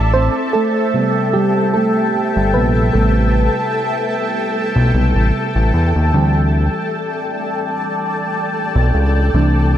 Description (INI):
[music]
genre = contemporary R&B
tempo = 75 BPM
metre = 4/4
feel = swing 54% on 16ths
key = A minor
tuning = A4 = 440 Hz
[part]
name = granular cloud pad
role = sustained chords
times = 0.0-9.8 s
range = A4 to A5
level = -20 LUFS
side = left 1 dB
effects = built-in reverb, phaser
[part]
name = fat analog bass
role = bass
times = 0.0-9.8 s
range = G1 to E2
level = -14 LUFS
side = equal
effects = none
[part]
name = mellow FM electric piano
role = accompaniment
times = 0.1-9.8 s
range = C3 to C5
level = -18 LUFS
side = right 2 dB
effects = chorus
[sound]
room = light reverb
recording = none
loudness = -14 LUFS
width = side -11 dB against mid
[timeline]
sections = 0.0-9.8 A section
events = FM electric piano solo 0.0-9.8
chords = 0.0 Am7; 6.1 D7sus4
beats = 0.54 1.34 2.14 | 2.94 3.74 4.54 5.34 | 6.14 6.94 7.74 8.54 | 9.34